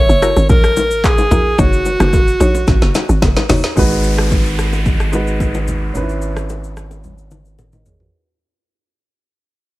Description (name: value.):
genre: amapiano.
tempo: 110 BPM.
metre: 4/4.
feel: straight.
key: G# minor.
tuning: A4 = 440 Hz.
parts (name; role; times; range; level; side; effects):
breathy alto saxophone; melody; 0.0-3.2 s; F#4 to C#5; -16 LUFS; equal; analog delay.
mallet-like synth pluck; stabs; 0.0-3.7 s; D#4 to C#5; -23 LUFS; left 2 dB; chorus, analog delay.
tight log drum bass; bass; 0.0-3.6 s; F#1 to A#1; -15 LUFS; equal; none.
afro-pop drum kit; drums; 0.1-8.1 s; handclaps, hi-hat, kick drum, rim click, shaker, snare drum, toms; -16 LUFS; equal; none.
bongos and congas; percussion; 0.4-8.0 s; none; -23 LUFS; left 2 dB; none.
warm grand piano; accompaniment; 3.8-8.3 s; G#3 to D#5; -21 LUFS; right 2 dB; low-pass filter.
round analog bass; bass; 3.8-8.1 s; G#1; -20 LUFS; equal; none.
downlifter; sound effects; 3.8-8.1 s; none; -26 LUFS; left 1 dB; none.
room: little or no reverb.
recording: echo-heavy mix.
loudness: -12 LUFS.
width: side -18 dB against mid.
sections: 0.0-3.8 A section; 3.8-8.1 B section.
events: drop 0.0-3.8; drum fill 2.7-3.8, 7.0-8.1; fade-out 3.8-8.1.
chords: 0.0 F#7; 1.6 D#m7/F#; 3.8 G#m7; 6.0 C#m7/G#.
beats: 0.50 1.04 | 1.59 2.13 2.68 3.22 | 3.77 4.31 4.86 5.41 | 5.95 6.50 7.04 7.59.